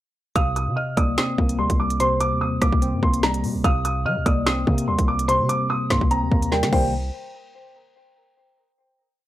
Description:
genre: hip hop, drill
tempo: 146 BPM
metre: 4/4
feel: half-time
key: C minor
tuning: A4 = 440 Hz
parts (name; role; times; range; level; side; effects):
- dark concert grand piano; melody; 0.4-6.9 s; G5 to F6; -25 LUFS; right 1 dB; none
- mallet-like synth pluck; second line; 0.4-6.9 s; Bb4 to F5; -29 LUFS; right 1 dB; chorus, analog delay
- mellow tine electric piano; accompaniment; 0.4-6.9 s; C3 to C4; -25 LUFS; left 1 dB; medium stereo tremolo
- hard-hitting 808-style bass; bass; 0.4-7.1 s; C2 to G3; -26 LUFS; equal; none
- drill drum kit; drums; 0.4-6.8 s; crash cymbal, hi-hat, kick drum, rim click, snare drum; -22 LUFS; equal; none
room: little or no reverb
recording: dry, gritty hardware recording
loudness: -19 LUFS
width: side -14 dB against mid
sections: 0.4-6.9 hook; 6.9-8.6 final hit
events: drum fill 6.5-6.9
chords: 0.4 Cm7; 6.9 N.C.

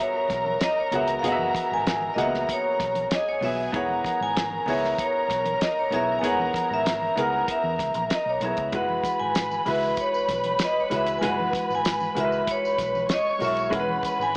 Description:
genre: lush 1970s-style soul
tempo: 96 BPM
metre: 4/4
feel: straight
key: unclear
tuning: A4 = 440 Hz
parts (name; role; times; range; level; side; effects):
- vibraphone with medium mallets; melody; 0.0-14.4 s; C#5 to G#5; -25 LUFS; equal; none
- muted chamber string section; second line; 0.0-14.4 s; G#4 to C#6; -28 LUFS; equal; none
- warm baby grand piano; accompaniment; 0.0-14.4 s; G#3 to F#5; -29 LUFS; equal; none
- vintage muted fingered electric bass; bass; 0.3-14.4 s; E1 to E2; -37 LUFS; equal; none
- damped 70s drum kit; drums; 0.3-14.2 s; hi-hat, kick drum, snare drum; -29 LUFS; equal; none
- congas; percussion; 0.3-14.2 s; none; -40 LUFS; equal; none
- tambourine; percussion; 9.1-14.3 s; none; -44 LUFS; equal; none
room: light reverb, studio reverb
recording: small speaker sound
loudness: -22 LUFS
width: side -39 dB against mid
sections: 0.0-14.4 A section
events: none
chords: 0.0 F#9sus4; 3.7 C#m7/E; 8.7 F#9sus4; 13.7 C#m7/E

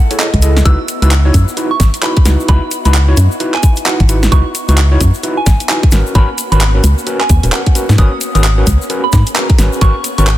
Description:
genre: UK garage, two-step garage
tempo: 131 BPM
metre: 4/4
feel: swing 61% on 16ths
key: C# minor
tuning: A4 = 442 Hz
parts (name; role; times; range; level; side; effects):
- soft string machine; sustained chords; 0.0-10.4 s; A3 to A4; -25 LUFS; left 1 dB; ensemble chorus, sidechain pumping
- overdriven tine electric piano; stabs; 0.1-10.3 s; C#4 to D#5; -19 LUFS; equal; medium tremolo, vintage 12-bit sampler grit, ping-pong delay
- garage drum kit; drums; 0.1-10.4 s; handclaps, hi-hat, snare drum; -18 LUFS; right 1 dB; overdrive
- tube shaker; percussion; 0.1-10.4 s; none; -26 LUFS; left 6 dB; none
- soft synth bell; melody; 0.2-10.4 s; D#5 to E6; -21 LUFS; right 2 dB; chorus, phaser, ping-pong delay
- organ-like FM bass; bass; 0.3-10.4 s; D#1 to G#2; -10 LUFS; equal; sidechain pumping
- electronic kick drum; drums; 0.3-9.9 s; none; -10 LUFS; equal; overdrive
room: little or no reverb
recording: dense, heavily limited modern master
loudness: -9 LUFS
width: side -14 dB against mid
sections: 0.0-10.4 A section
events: none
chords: 0.0 F#m11 (rootless); 0.7 C#m11; 5.9 G#m11

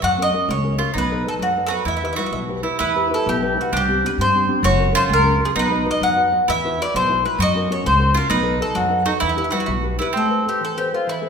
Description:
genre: italian folk, Italian serenade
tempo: 131 BPM (dotted quarters)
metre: 6/8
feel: rubato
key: E minor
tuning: A4 = 436 Hz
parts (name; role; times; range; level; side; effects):
- bowl-back mandolin; melody; 0.0-11.3 s; D#4 to F#5; -20 LUFS; left 1 dB; none
- bowl-back mandolin; second line; 0.0-11.3 s; C4 to F#4; -24 LUFS; right 5 dB; none
- nylon-string guitar; accompaniment; 0.0-11.3 s; B2 to D#5; -25 LUFS; left 3 dB; none
- upright bass; bass; 0.0-10.0 s; F#1 to G2; -24 LUFS; equal; none
room: wet recital hall reverb, RT60 1.5 s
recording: minimal, uncompressed stereo recording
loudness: -17 LUFS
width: side -6 dB against mid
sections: 0.0-2.8 A section; 2.8-10.1 A section; 10.1-11.3 B section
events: none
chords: 0.0 F#; 0.9 B7; 1.9 Em; 3.7 Csus2; 4.6 F#; 5.5 B; 6.5 Esus2; 7.4 F#; 8.3 B7; 9.2 Em; 10.1 Amadd9

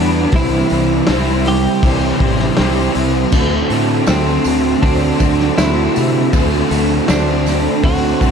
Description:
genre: rock, shoegaze and dream pop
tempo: 80 BPM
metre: 4/4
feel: straight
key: D mixolydian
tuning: A4 = 440 Hz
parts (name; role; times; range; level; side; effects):
- twelve-string electric guitar; melody; 0.0-8.3 s; C4 to G4; -21 LUFS; equal; tape echo
- direct-recorded clean electric guitar; arpeggios; 0.0-8.3 s; E3 to G4; -26 LUFS; left 10 dB; ensemble chorus, tape echo
- overdriven electric guitar; riff; 0.0-8.3 s; C3 to C5; -20 LUFS; left 13 dB; ensemble chorus
- overdriven semi-hollow guitar; riff; 0.0-8.3 s; C3 to C5; -18 LUFS; right 15 dB; reverse reverb
- fuzz fingered electric bass; bass; 0.0-8.3 s; A1 to C3; -18 LUFS; equal; overdrive
- loose indie drum kit; drums; 0.3-8.3 s; crash cymbal, hi-hat, kick drum, snare drum; -19 LUFS; equal; none
- tambourine; percussion; 3.3-8.3 s; none; -33 LUFS; right 18 dB; none
room: little or no reverb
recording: dark, warm production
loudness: -12 LUFS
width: side -6 dB against mid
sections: 0.0-8.3 A section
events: none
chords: 0.3 Cadd9; 3.3 D7(no3)

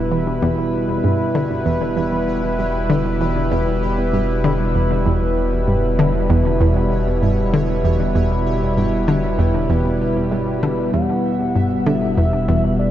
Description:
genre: ambient, sequencer-driven space music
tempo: 97 BPM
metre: 4/4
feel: straight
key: E dorian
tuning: A4 = 439 Hz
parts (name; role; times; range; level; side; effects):
- sweeping resonant pad; sustained chords; 0.0-12.9 s; B2 to B4; -19 LUFS; equal; chorus, shimmer reverb
- analog pluck; riff; 0.0-12.6 s; E2 to E3; -20 LUFS; equal; chorus, analog delay
- warm sub bass; bass; 0.0-12.9 s; E1; -25 LUFS; equal; none
- pulsing gated texture; texture; 0.2-12.9 s; G4 to G5; -38 LUFS; right 2 dB; chorus, built-in reverb, shimmer reverb
- pulse-width lead; melody; 10.9-12.9 s; D5 to F#5; -24 LUFS; equal; chorus, shimmer reverb, analog delay
room: wet lush hall reverb, RT60 2.9 s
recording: dreamy mix soaked in reverb, nothing above 8.0 kHz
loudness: -16 LUFS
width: side -12 dB against mid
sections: 0.0-12.9 A section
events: fade-in on synth texture 0.0-12.9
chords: 0.0 Em

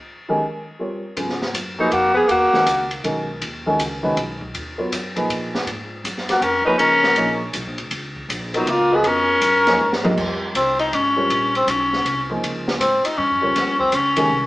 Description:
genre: modal jazz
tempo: 160 BPM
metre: 3/4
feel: swing 65% on 8ths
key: G# dorian, Bb dorian from 10.2 s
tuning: A4 = 444 Hz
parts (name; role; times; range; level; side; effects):
- warm upright piano; accompaniment; 0.3-14.3 s; A#2 to D#5; -24 LUFS; equal; none
- upright bass; bass; 1.2-14.5 s; E#1 to A#2; -33 LUFS; equal; none
- open jazz drum kit; drums; 1.2-14.2 s; crash cymbal, hi-hat, kick drum, ride cymbal, snare drum, toms; -26 LUFS; equal; none
- warm alto saxophone; melody; 1.8-2.9, 6.3-10.1 s; D#4 to B4; -18 LUFS; left 1 dB; none
- bright tenor saxophone; second line; 1.8-2.9, 6.3-14.5 s; F#3 to D#4; -18 LUFS; left 1 dB; none
room: wet stone room reverb, RT60 1.1 s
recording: band playing live in one room, small speaker sound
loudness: -17 LUFS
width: side -18 dB against mid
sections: 0.0-1.2 A section; 1.2-10.2 B section; 10.2-14.5 C section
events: break 0.0-1.2; drum fill 9.8-10.2; tenor saxophone solo 10.2-14.5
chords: 0.0 Ab6; 1.2 G#m9; 5.7 A#m; 10.2 Bbm9

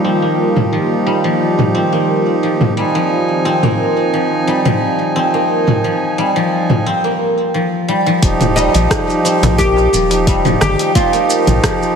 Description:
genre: organic downtempo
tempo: 88 BPM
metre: 4/4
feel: straight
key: unclear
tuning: A4 = 440 Hz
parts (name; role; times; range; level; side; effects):
- hand-pumped harmonium; accompaniment; 0.0-12.0 s; F3 to Ab5; -18 LUFS; right 2 dB; sidechain pumping, digital delay
- warm analog pad; sustained chords; 0.0-6.8 s; Eb3 to Ab5; -20 LUFS; right 1 dB; chorus, sidechain pumping
- guzheng; arpeggios; 0.0-12.0 s; F3 to C4; -17 LUFS; equal; low-pass filter, digital delay
- deep house drum kit; drums; 0.6-11.9 s; hi-hat, rim click, shaker, toms; -17 LUFS; equal; none
- round analog bass; bass; 8.2-11.6 s; Eb1 to Bb1; -17 LUFS; equal; sidechain pumping
- electronic kick drum; drums; 8.2-11.8 s; none; -17 LUFS; equal; none
- oud; melody; 8.6-12.0 s; Eb4 to G4; -17 LUFS; equal; digital delay
- darbuka; percussion; 9.4-11.3 s; none; -25 LUFS; right 2 dB; none
room: wet lush hall reverb, RT60 2.2 s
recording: heavily compressed radio sound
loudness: -12 LUFS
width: side -6 dB against mid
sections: 0.0-8.2 A section; 8.2-12.0 B section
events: none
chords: 0.0 Ebadd9; 2.8 Fm7; 8.2 Ebadd9

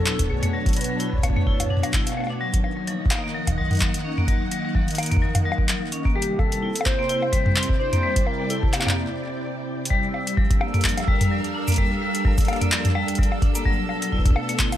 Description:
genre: IDM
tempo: 128 BPM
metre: 4/4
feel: swing 56% on 16ths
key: unclear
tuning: A4 = 441 Hz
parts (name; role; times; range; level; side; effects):
- warm velvety synth lead; melody; 0.0-1.9, 6.2-9.0 s; G4 to C#5; -29 LUFS; equal; chorus, cassette tape, tape echo
- soft string machine; sustained chords; 0.0-14.8 s; B2 to A5; -28 LUFS; right 1 dB; ensemble chorus
- vibraphone with hard mallets; arpeggios; 0.0-14.7 s; F3 to E4; -28 LUFS; left 2 dB; low-pass filter, digital delay
- booming analog drum machine; drums; 0.1-14.8 s; bongos, handclaps, hi-hat, shaker, toms; -24 LUFS; equal; overdrive
- electronic kick drum; drums; 0.2-14.7 s; none; -22 LUFS; equal; overdrive
- bubbling stepped-filter texture; texture; 9.9-14.8 s; E6; -35 LUFS; right 4 dB; chorus, built-in reverb
room: little or no reverb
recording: none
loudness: -20 LUFS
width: side -12 dB against mid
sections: 0.0-9.9 A section; 9.9-14.8 B section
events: break 9.0-9.9; drum fill 9.7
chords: 0.0 Bm7; 2.4 Ebm; 6.2 Cadd9; 9.9 Gm7; 13.7 Bm7

